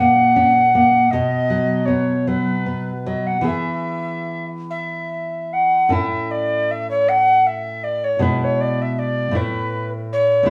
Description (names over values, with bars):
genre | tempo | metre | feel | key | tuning
romantic duo for recorder and classical guitar | 47-54 BPM (dotted quarters) | 6/8 | rubato | E major, A major from 5.9 s | A4 = 445 Hz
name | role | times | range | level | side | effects
alto recorder | melody | 0.0-10.5 s | B4 to F#5 | -20 LUFS | equal | none
nylon-string guitar | accompaniment | 0.0-10.5 s | E2 to G#4 | -24 LUFS | equal | none
room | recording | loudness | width
wet studio reverb, RT60 0.5 s | band playing live in one room, studio reverb | -19 LUFS | mono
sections
0.0-5.9 A section; 5.9-10.5 B section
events
none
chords
0.0 F#/A#; 1.1 B; 3.5 E; 5.9 A; 8.2 E/B; 9.4 A5